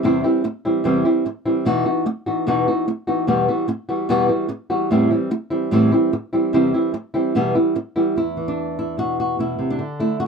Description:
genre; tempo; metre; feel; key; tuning
flamenco; 148 BPM; 4/4; straight; E harmonic minor; A4 = 439 Hz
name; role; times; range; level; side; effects
flamenco guitar; solo; 0.0-10.3 s; E2 to F#4; -17 LUFS; equal; none
room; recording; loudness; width
light reverb; close, detailed microphones; -18 LUFS; side -5 dB against mid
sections
0.0-8.2 A section; 8.2-10.3 B section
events
none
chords
0.0 C/E; 1.7 B/E; 3.3 Emadd9; 4.9 Am7/E; 6.5 C/E; 7.3 Em; 8.2 E5

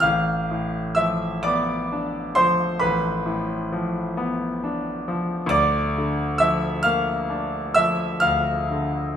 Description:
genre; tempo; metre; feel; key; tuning
classical, romantic nocturne for solo piano; 41-46 BPM (dotted quarters); 12/8; rubato; unclear; A4 = 440 Hz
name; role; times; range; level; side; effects
bright concert grand piano; solo; 0.0-9.2 s; A1 to F6; -20 LUFS; equal; none
room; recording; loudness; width
moderate recital hall reverb, RT60 1.5 s; minimal, uncompressed stereo recording; -20 LUFS; side -9 dB against mid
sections
0.0-9.2 A section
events
none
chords
0.0 Bm7b5/A; 5.5 Bb/D

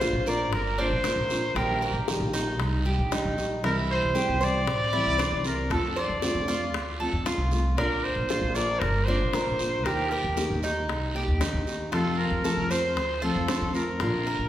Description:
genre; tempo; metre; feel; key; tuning
latin, Cuban son and guajira; 116 BPM; 4/4; straight; unclear; A4 = 438 Hz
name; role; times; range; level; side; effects
warm trumpet; melody; 0.0-14.5 s; G4 to D5; -28 LUFS; equal; none
nylon-string guitar; accompaniment; 0.0-14.5 s; C3 to G4; -31 LUFS; left 2 dB; none
Cuban tres; arpeggios; 0.0-14.5 s; D4 to C5; -32 LUFS; right 2 dB; none
upright bass; bass; 0.0-14.5 s; G1 to F2; -30 LUFS; equal; none
bongos; percussion; 0.0-14.5 s; none; -36 LUFS; left 4 dB; none
guiro; percussion; 0.0-14.5 s; none; -38 LUFS; right 4 dB; none
room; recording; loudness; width
wet recital hall reverb, RT60 1.8 s; recorded in a church or concert hall; -24 LUFS; side -12 dB against mid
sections
0.0-14.5 A section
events
none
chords
0.0 Bb; 1.6 Eb/Bb; 3.6 C; 5.7 F6; 7.8 Bb; 9.9 Eb; 11.9 F

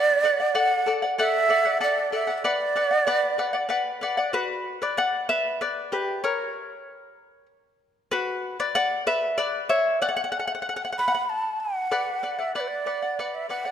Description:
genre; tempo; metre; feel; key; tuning
andean folk, Andean ensemble; 63 BPM (dotted quarters); 6/8; straight; B minor; A4 = 440 Hz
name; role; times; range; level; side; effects
breathy large quena; melody; 0.0-3.7, 11.0-13.7 s; B4 to B5; -23 LUFS; right 3 dB; none
charango; accompaniment; 0.0-13.7 s; F#4 to F#5; -25 LUFS; left 2 dB; none
room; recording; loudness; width
moderate scoring stage reverb, RT60 2.0 s; none; -22 LUFS; side -9 dB against mid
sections
0.0-4.3 A section; 4.3-11.9 B section; 11.9-13.7 C section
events
charango solo 4.3-11.9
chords
0.0 Bm; 0.6 D; 2.4 Bm; 6.2 N.C.; 8.1 Bm; 10.0 N.C.; 11.9 Bm

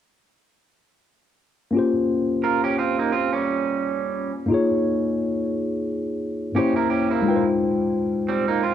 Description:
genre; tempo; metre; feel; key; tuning
R&B; 87 BPM; 4/4; swing 58% on 16ths; Bb dorian; A4 = 439 Hz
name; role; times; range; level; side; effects
tine electric piano; accompaniment; 1.7-8.7 s; Ab3 to G5; -21 LUFS; left 2 dB; lush chorus
electric guitar through a small old amp; second line; 2.4-8.7 s; G3 to Bb4; -24 LUFS; right 7 dB; none
room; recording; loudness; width
moderate plate reverb, RT60 3.2 s; dark, warm production; -20 LUFS; side -10 dB against mid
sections
1.7-8.7 A section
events
none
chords
1.7 Bbm69; 4.5 Eb9sus4; 6.6 C7b9; 7.2 Fm9

